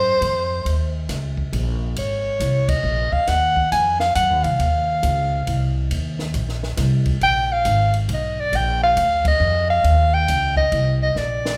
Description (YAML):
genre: jazz, small-group swing and bop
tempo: 137 BPM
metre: 3/4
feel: swing 65% on 8ths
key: unclear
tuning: A4 = 440 Hz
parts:
  - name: warm soprano saxophone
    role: melody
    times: 0.0-11.6 s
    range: C5 to Ab5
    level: -21 LUFS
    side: equal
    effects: none
  - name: upright bass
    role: bass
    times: 0.0-11.6 s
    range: Ab1 to Gb2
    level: -24 LUFS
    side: equal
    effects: none
  - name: compact cocktail drum kit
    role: drums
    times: 0.2-11.6 s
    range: hi-hat, kick drum, ride cymbal, snare drum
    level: -31 LUFS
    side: equal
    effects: none
room: moderate recital hall reverb, RT60 1.4 s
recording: recorded in a church or concert hall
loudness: -20 LUFS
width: mono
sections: 0.0-11.6 A section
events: band accent 2.6, 9.2; drum fill 11.2-11.6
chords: 0.0 Ab6 (rootless); 0.7 Eb5; 2.0 Ab13; 4.6 Ebsus2; 7.2 Bb7; 9.8 Eb6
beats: 0.21 | 0.65 1.09 1.53 | 1.97 2.40 2.84 | 3.28 3.72 4.16 | 4.59 5.03 5.47 | 5.91 6.34 6.78 | 7.22 7.66 8.10 | 8.53 8.97 9.41 | 9.85 10.28 10.72 | 11.16